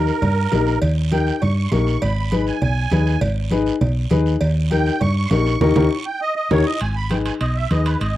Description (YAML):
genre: latin, cumbia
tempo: 200 BPM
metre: 4/4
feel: straight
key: G# harmonic minor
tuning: A4 = 440 Hz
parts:
  - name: musette accordion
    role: melody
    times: 0.0-8.1 s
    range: A#4 to C#6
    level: -25 LUFS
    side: right 4 dB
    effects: none
  - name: dark upright piano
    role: accompaniment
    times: 0.0-7.9 s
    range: D#4 to B4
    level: -21 LUFS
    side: left 6 dB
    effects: none
  - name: hollow-body short-scale fingered electric bass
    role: bass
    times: 0.0-8.2 s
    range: G#1 to G2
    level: -19 LUFS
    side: equal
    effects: none
  - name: guiro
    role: percussion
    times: 0.1-8.2 s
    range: none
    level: -37 LUFS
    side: right 8 dB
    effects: none
  - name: congas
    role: percussion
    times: 0.2-8.2 s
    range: none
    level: -24 LUFS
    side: right 2 dB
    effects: none
  - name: cowbell and timbales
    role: percussion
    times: 0.2-8.2 s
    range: none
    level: -29 LUFS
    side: right 4 dB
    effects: none
room: light reverb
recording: dry, close 1970s-style studio recording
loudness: -16 LUFS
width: side -14 dB against mid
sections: 0.0-6.8 A section; 6.8-8.2 B section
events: accordion solo 0.0-6.8; band accent 5.6-6.8; drum fill 5.9-6.8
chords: 0.0 D#7; 2.0 G#m; 4.4 D#7; 6.8 G#m